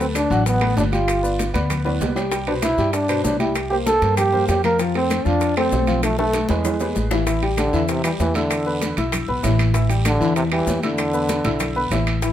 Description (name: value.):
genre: latin, salsa.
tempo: 194 BPM.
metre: 4/4.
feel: straight.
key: A minor.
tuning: A4 = 440 Hz.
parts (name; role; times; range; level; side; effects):
warm trombone; melody; 0.0-11.9 s; C3 to Bb4; -21 LUFS; right 1 dB; plate reverb.
warm upright piano; accompaniment; 0.0-12.3 s; B2 to E6; -24 LUFS; left 3 dB; none.
upright bass; bass; 0.0-12.3 s; G1 to G2; -23 LUFS; equal; none.
bongos; percussion; 0.0-12.3 s; none; -32 LUFS; left 6 dB; none.
congas; percussion; 0.0-12.3 s; none; -30 LUFS; left 1 dB; none.
maracas; percussion; 0.0-12.3 s; none; -36 LUFS; left 6 dB; none.
timbales; percussion; 0.0-12.3 s; none; -30 LUFS; right 7 dB; none.
guiro; percussion; 0.1-12.3 s; none; -36 LUFS; right 4 dB; none.
claves; percussion; 0.2-12.2 s; none; -35 LUFS; left 5 dB; none.
room: light reverb.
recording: close, detailed microphones.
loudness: -17 LUFS.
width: side -11 dB against mid.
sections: 0.0-7.3 A section; 7.3-12.3 B section.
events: drum fill 1.9-2.3, 6.0-7.3.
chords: 0.0 D6; 1.1 G7; 2.3 Cmaj9; 3.6 C5; 4.8 F; 6.0 Eadd11/B; 6.6 E; 7.3 A5; 8.5 E5; 9.7 A5; 11.0 E5.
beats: 0.15 0.46 0.77 | 1.08 1.39 1.70 2.01 | 2.32 2.63 2.94 3.25 | 3.56 3.87 4.17 4.48 | 4.79 5.10 5.41 5.72 | 6.03 6.34 6.65 6.96 | 7.27 7.58 7.89 8.20 | 8.51 8.81 9.12 9.44 | 9.74 10.05 10.36 10.67 | 10.98 11.29 11.61 11.91 | 12.22.